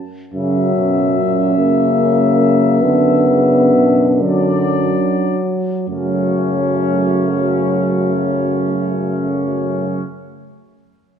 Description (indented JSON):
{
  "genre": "classical, hymn-like piece for brass band",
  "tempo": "33-49 BPM (dotted quarters)",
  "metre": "6/8",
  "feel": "rubato",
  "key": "F# minor",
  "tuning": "A4 = 441 Hz",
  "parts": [
    { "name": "mellow trumpet section", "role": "melody", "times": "0.3-10.0 s", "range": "C#4 to E5", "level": "-22 LUFS", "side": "left 6 dB", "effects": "none" },
    { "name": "mellow French horn section", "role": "second line", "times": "0.3-10.0 s", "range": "A3 to D4", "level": "-23 LUFS", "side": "right 7 dB", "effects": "none" },
    { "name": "warm euphonium", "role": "accompaniment", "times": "0.3-10.0 s", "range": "F#3 to B3", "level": "-17 LUFS", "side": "left 1 dB", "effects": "none" },
    { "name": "clear tuba", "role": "bass", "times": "0.3-10.0 s", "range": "F#2", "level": "-20 LUFS", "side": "equal", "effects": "none" },
    { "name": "warm euphonium", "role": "accompaniment", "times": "0.4-10.0 s", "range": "A#2 to D3", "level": "-24 LUFS", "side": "right 2 dB", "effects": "none" }
  ],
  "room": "light reverb",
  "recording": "minimal, uncompressed stereo recording",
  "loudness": "-13 LUFS",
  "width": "side -8 dB against mid",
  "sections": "0.3-5.9 A section; 5.9-9.3 B section",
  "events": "slowing down 0.0-5.9",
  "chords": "0.3 F#7; 2.8 Bm/F#; 5.9 F#m"
}